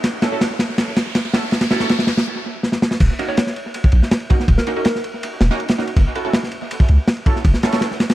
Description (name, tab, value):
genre	drum and bass, jungle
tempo	162 BPM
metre	4/4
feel	straight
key	Eb phrygian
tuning	A4 = 440 Hz
part	crunchy breakbeat drum kit	drums	0.0-8.1 s	crash cymbal, kick drum, ride cymbal, snare drum	-17 LUFS	equal	dub echo
part	riser	sound effects	0.0-2.3 s	none	-29 LUFS	equal	none
part	orchestra-hit-like synth stab	stabs	0.2-7.8 s	Bb3 to A4	-26 LUFS	right 3 dB	built-in reverb, dub echo
part	long sustained 808-style bass	bass	3.0-7.5 s	Eb1 to Db2	-14 LUFS	equal	none
part	soft struck synth lead	melody	3.3-5.0 s	Bb4 to Db5	-30 LUFS	right 1 dB	chorus, dub echo
room	small room ambience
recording	echo-heavy mix, vinyl crackle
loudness	-15 LUFS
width	side -15 dB against mid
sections	0.0-3.0 A section; 3.0-8.1 B section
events	build-up 0.0-3.0; drum fill 0.0-2.3, 2.6-3.0; riser 0.0-2.3; filter sweep on synth stab 0.0-3.0; break 2.3-3.0; drop 3.0-8.1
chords	0.0 Gbm7; 3.0 Ebm7; 6.0 Gbm7